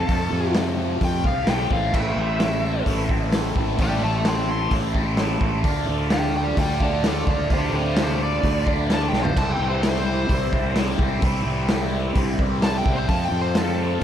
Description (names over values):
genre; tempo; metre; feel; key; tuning
psychedelic rock; 129 BPM; 4/4; straight; A minor; A4 = 441 Hz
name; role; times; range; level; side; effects
dark smooth lead guitar; melody; 0.0-14.0 s; G4 to C6; -27 LUFS; left 1 dB; wah, overdrive, diffuse ambient delay
overdriven electric guitar; riff; 0.0-14.0 s; F2 to F4; -27 LUFS; left 1 dB; phaser
fuzz fingered electric bass; bass; 0.0-14.0 s; A1 to F2; -24 LUFS; equal; overdrive
raw garage drum kit; drums; 0.1-14.0 s; crash cymbal, hi-hat, kick drum, snare drum, toms; -24 LUFS; equal; none
overdriven combo organ; sustained chords; 1.9-14.0 s; C4 to C5; -34 LUFS; right 5 dB; none
room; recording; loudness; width
moderate plate reverb, RT60 1.7 s, small room ambience; dreamy mix soaked in reverb; -19 LUFS; side -10 dB against mid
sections
0.0-14.0 A section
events
lead electric guitar solo 0.0-14.0; drum fill 9.1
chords
0.0 F; 1.9 Am; 5.6 Dm; 9.4 C; 13.1 F